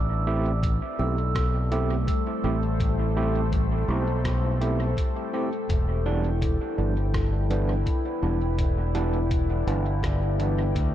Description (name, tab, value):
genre	ambient dub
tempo	83 BPM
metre	4/4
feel	straight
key	A minor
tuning	A4 = 440 Hz
part	deep dark ambient pad	sustained chords	0.0-10.9 s	A3 to G5	-32 LUFS	left 2 dB	chorus, built-in reverb
part	vibraphone with soft mallets	arpeggios	0.0-10.9 s	G3 to E6	-33 LUFS	left 2 dB	tape echo
part	growling fingered electric bass	bass	0.0-10.9 s	E1 to D2	-25 LUFS	equal	overdrive
part	overdriven tine electric piano	stabs	0.3-10.6 s	E3 to G4	-31 LUFS	right 4 dB	medium tremolo, dub echo
part	electronic kick drum	drums	0.6-10.9 s	none	-27 LUFS	equal	small room ambience
part	lo-fi sampler-style drum kit	drums	0.6-10.9 s	hi-hat, rim click	-41 LUFS	equal	small room ambience, dub echo
room	light reverb, digital ambience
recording	dark, warm production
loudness	-23 LUFS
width	side -12 dB against mid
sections	0.0-10.9 A section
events	none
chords	0.0 Am7; 5.7 Em7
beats	0.63 1.35 2.08 | 2.80 3.52 4.25 4.97 | 5.69 6.42 7.14 7.86 | 8.58 9.31 10.03 10.75